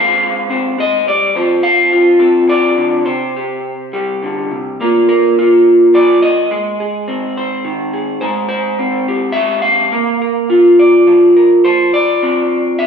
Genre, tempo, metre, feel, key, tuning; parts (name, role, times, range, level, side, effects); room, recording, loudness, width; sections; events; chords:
folk, solo fingerstyle acoustic guitar; 105 BPM; 3/4; rubato; A4 = 441 Hz
electric guitar through a small old amp; solo; 0.0-12.9 s; C3 to F5; -10 LUFS; equal
wet large studio reverb, RT60 1.2 s; band playing live in one room; -10 LUFS; side -7 dB against mid
0.0-4.8 A section; 4.8-12.9 B section
0.0 Ab; 1.3 F; 3.1 C5; 4.8 Bb5; 6.5 Ab; 8.2 Abmaj7#5; 9.9 Bb; 11.7 F5